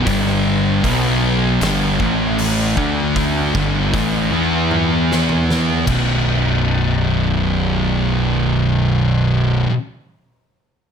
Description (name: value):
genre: stoner and doom metal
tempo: 77 BPM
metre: 4/4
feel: straight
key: B minor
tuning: A4 = 439 Hz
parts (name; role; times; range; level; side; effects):
- thick fuzz guitar; riff; 0.0-9.7 s; B1 to E4; -18 LUFS; left 7 dB; distortion
- thick fuzz guitar; riff; 0.0-9.7 s; B1 to E4; -20 LUFS; right 10 dB; distortion
- fuzz picked electric bass; bass; 0.0-9.7 s; B0 to E2; -22 LUFS; equal; overdrive, tube saturation
- oversized low-tuned drum kit; drums; 0.1-6.1 s; crash cymbal, hi-hat, kick drum, snare drum, toms; -24 LUFS; equal; none
room: light reverb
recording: none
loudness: -15 LUFS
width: side -7 dB against mid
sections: 0.0-6.3 A section; 6.3-9.4 B section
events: drum fill 4.7-6.3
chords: 0.1 G5; 0.8 B5; 1.6 G5; 2.0 A5; 2.8 D5; 3.5 G5; 4.3 E5; 5.9 B5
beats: | 0.06 0.84 1.61 2.38 | 3.16 3.93 4.71 5.48 | 6.26 7.04 7.82 8.60